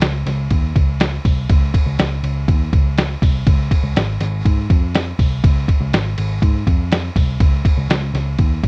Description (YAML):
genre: jangly indie pop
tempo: 122 BPM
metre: 4/4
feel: straight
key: Db major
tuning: A4 = 440 Hz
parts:
  - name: vintage muted picked electric bass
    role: bass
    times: 0.0-8.7 s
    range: Ab1 to Ab2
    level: -19 LUFS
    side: equal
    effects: none
  - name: lo-fi sampler-style drum kit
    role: drums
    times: 0.0-8.7 s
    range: hi-hat, kick drum, ride cymbal, snare drum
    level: -15 LUFS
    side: equal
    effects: none
room: little or no reverb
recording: worn, warbling old tape, cassette tape, warbly pitch drift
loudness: -14 LUFS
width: side -34 dB against mid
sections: 0.0-8.7 A section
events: none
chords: none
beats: 0.02 0.51 1.00 | 1.50 1.99 2.48 2.98 | 3.47 3.96 4.45 4.94 | 5.44 5.93 6.42 6.91 | 7.41 7.90 8.39